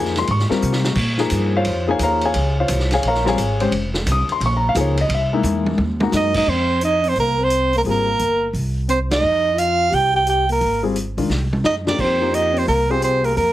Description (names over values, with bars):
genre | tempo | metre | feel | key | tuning
modal jazz | 174 BPM | 4/4 | swing 65% on 8ths | Bb dorian, F dorian from 6.5 s | A4 = 439 Hz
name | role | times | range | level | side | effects
dark grand piano | accompaniment | 0.0-8.1, 10.8-13.3 s | Eb3 to Eb6 | -20 LUFS | left 3 dB | none
upright bass | bass | 0.0-13.5 s | F1 to C3 | -22 LUFS | equal | none
vintage drum kit | drums | 0.0-13.5 s | crash cymbal, hi-hat, kick drum, ride cymbal, snare drum, toms | -26 LUFS | equal | none
breathy trombone | second line | 6.1-13.5 s | Bb3 to G4 | -24 LUFS | left 3 dB | none
breathy soprano saxophone | melody | 6.2-13.5 s | Bb4 to G5 | -18 LUFS | right 3 dB | none
room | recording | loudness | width
moderate club ambience, RT60 0.5 s | heavily compressed radio sound, multiband compression | -16 LUFS | side -14 dB against mid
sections
0.0-6.5 A section; 6.5-13.5 B section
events
drum fill 0.6-1.0, 5.4-6.1, 11.3-12.0; band accent 9.1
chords
0.0 Bbm9; 5.1 C7alt; 6.5 Fm11